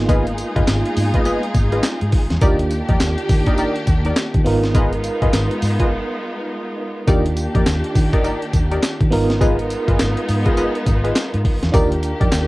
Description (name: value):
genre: R&B, new jack swing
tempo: 103 BPM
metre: 4/4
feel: swing 62% on 16ths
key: unclear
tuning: A4 = 438 Hz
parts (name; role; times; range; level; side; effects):
- FM electric piano with tremolo; accompaniment; 0.0-12.5 s; Bb3 to Bb4; -24 LUFS; right 2 dB; none
- rich studio string section; sustained chords; 0.0-12.5 s; Eb3 to Ab4; -26 LUFS; equal; none
- vintage muted fingered electric bass; bass; 0.0-12.5 s; G1 to Eb3; -20 LUFS; equal; none
- funky polysynth comp; stabs; 0.1-12.3 s; Eb4 to Eb5; -24 LUFS; left 1 dB; chorus
- breakbeat sampler-style drum kit; drums; 0.1-12.5 s; handclaps, hi-hat, kick drum, snare drum, tambourine; -18 LUFS; equal; cassette tape
room: little or no reverb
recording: home recording on cassette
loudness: -16 LUFS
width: side -20 dB against mid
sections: 0.0-12.5 A section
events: break 5.9-7.1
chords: 0.0 Abm6; 2.4 Ebmaj7; 4.5 Abm6; 7.1 Ebmaj7; 9.1 Abm6; 11.7 Ebmaj7